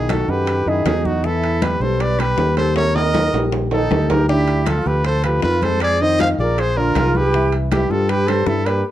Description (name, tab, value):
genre	Afro-Cuban jazz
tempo	157 BPM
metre	4/4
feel	straight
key	unclear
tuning	A4 = 440 Hz
part	bright trumpet	melody	0.0-8.8 s	F#4 to F5	-21 LUFS	equal	none
part	breathy jazz flute	second line	0.0-8.8 s	D#4 to C5	-24 LUFS	right 2 dB	none
part	dark upright piano	accompaniment	0.0-8.8 s	D3 to F#5	-23 LUFS	equal	none
part	fingered electric bass	bass	0.0-8.8 s	Bb1 to G2	-20 LUFS	equal	none
part	bongos	percussion	0.1-8.9 s	none	-29 LUFS	left 7 dB	none
part	claves	percussion	0.1-8.5 s	none	-38 LUFS	left 7 dB	none
part	congas	percussion	0.1-8.7 s	none	-28 LUFS	left 1 dB	none
part	timbales	percussion	0.1-8.9 s	none	-25 LUFS	right 2 dB	none
room	moderate small room reverb, RT60 0.6 s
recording	worn, warbling old tape, cassette tape, warbly pitch drift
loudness	-15 LUFS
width	side -12 dB against mid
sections	0.0-8.9 A section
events	drum fill 2.8-4.3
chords	0.0 B7b13; 1.2 Em; 2.8 Eb; 4.3 Dm9; 5.8 Fm7; 6.6 Bb9; 7.3 Cmaj7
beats	0.09 0.47 0.85 | 1.24 1.62 2.00 2.38 | 2.76 3.15 3.53 3.91 | 4.29 4.67 5.05 5.43 | 5.81 6.19 6.57 6.95 | 7.33 7.71 8.09 8.47 | 8.85